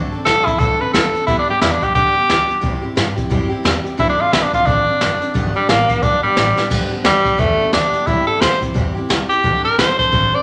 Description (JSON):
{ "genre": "rockabilly", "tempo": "177 BPM", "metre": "4/4", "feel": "swing 60% on 8ths", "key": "G major", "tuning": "A4 = 440 Hz", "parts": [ { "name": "picked steel-string acoustic guitar", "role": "accompaniment", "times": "0.0-10.4 s", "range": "G2 to A4", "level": "-28 LUFS", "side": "equal", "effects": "none" }, { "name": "upright bass", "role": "bass", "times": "0.0-10.4 s", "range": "F#1 to G2", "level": "-28 LUFS", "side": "equal", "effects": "none" }, { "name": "bright tenor saxophone", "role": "melody", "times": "0.3-10.4 s", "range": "G3 to D5", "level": "-18 LUFS", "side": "equal", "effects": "none" }, { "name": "jazz brush drum kit", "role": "drums", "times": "0.3-10.2 s", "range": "crash cymbal, hi-hat, kick drum, snare drum", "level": "-22 LUFS", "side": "equal", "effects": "none" } ], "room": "wet large studio reverb, RT60 1.4 s", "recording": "none", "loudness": "-16 LUFS", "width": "mono", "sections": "0.0-6.7 A section; 6.7-10.4 B section", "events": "drum fill 6.5; tenor saxophone solo 6.7-10.4", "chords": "0.0 D7; 1.3 G; 2.6 C; 4.0 D7; 5.3 G; 8.1 C; 9.4 D7" }